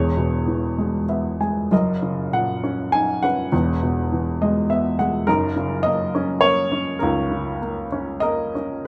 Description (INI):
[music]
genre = classical, lyrical solo piano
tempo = 94-106 BPM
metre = 3/4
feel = rubato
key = unclear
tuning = A4 = 440 Hz
[part]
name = warm baby grand piano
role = solo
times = 0.0-8.9 s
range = E1 to G#5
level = -22 LUFS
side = equal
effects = none
[sound]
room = light reverb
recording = close, detailed microphones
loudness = -22 LUFS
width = mono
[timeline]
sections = 0.0-8.9 A section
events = grand piano fill 0.8-1.7, 4.1-5.3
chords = 0.0 C#m7/E; 1.7 F#6; 3.5 Eadd9; 5.3 F#6